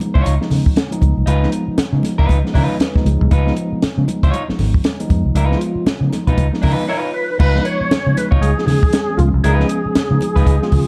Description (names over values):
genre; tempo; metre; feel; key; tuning
funk; 118 BPM; 4/4; swing 60% on 16ths; Db mixolydian; A4 = 441 Hz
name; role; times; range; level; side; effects
mellow tine electric piano; stabs; 0.0-10.9 s; Eb3 to Eb5; -25 LUFS; equal; tape echo
compact cocktail drum kit; drums; 0.0-10.9 s; crash cymbal, hi-hat, kick drum, snare drum; -20 LUFS; equal; none
congas; percussion; 0.0-10.9 s; none; -29 LUFS; equal; none
clean electric guitar; accompaniment; 0.1-10.6 s; Eb4 to Db5; -26 LUFS; equal; none
vintage muted fingered electric bass; bass; 0.2-10.8 s; Ab1 to Db3; -19 LUFS; equal; none
percussive tonewheel organ; melody; 6.9-10.9 s; F4 to Db5; -23 LUFS; equal; overdrive, chorus vibrato, slow rotary speaker
room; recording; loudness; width
light reverb; dark, warm production; -16 LUFS; mono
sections
0.0-7.4 A section; 7.4-10.9 B section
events
tine electric piano fill 2.3-3.3; break 6.9-7.4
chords
0.0 Db9